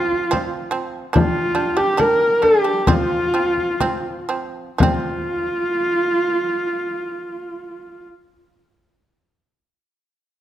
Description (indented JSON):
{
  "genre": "mongolian traditional, Mongolian folk",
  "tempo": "59-75 BPM",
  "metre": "4/4",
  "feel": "straight",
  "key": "F zhi mode",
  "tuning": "A4 = 440 Hz",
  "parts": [
    { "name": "dark horsehead fiddle", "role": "melody", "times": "0.0-8.1 s", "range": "F4 to Bb4", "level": "-19 LUFS", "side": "equal", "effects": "none" },
    { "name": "shamisen", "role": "arpeggios", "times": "0.0-8.1 s", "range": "F3 to D4", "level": "-24 LUFS", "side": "right 4 dB", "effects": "none" },
    { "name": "frame drum", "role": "percussion", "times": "0.1-5.3 s", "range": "none", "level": "-20 LUFS", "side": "left 2 dB", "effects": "none" }
  ],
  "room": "moderate recital hall reverb, RT60 1.6 s",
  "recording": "close, detailed microphones",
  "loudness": "-17 LUFS",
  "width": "side -12 dB against mid",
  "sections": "0.0-4.8 A section; 4.8-8.9 B section",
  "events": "slowing down 0.0-4.8",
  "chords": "0.0 F5; 1.1 G5; 2.9 F5"
}